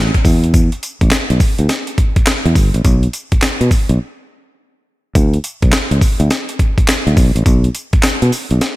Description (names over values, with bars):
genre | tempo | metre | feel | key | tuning
R&B, new jack swing | 104 BPM | 4/4 | swing 64% on 16ths | unclear | A4 = 440 Hz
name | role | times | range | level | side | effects
fingered electric bass | bass | 0.0-8.6 s | G1 to B2 | -13 LUFS | equal | none
breakbeat sampler-style drum kit | drums | 0.1-8.8 s | handclaps, hi-hat, kick drum, snare drum, tambourine | -14 LUFS | equal | none
room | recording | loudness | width
digital ambience | none | -12 LUFS | side -18 dB against mid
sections
0.0-5.2 A section; 5.2-8.8 A section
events
break 4.0-5.2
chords
none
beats
| 0.54 1.12 1.69 2.27 | 2.85 3.42 4.00 4.58 | 5.15 5.73 6.31 6.88 | 7.46 8.04 8.62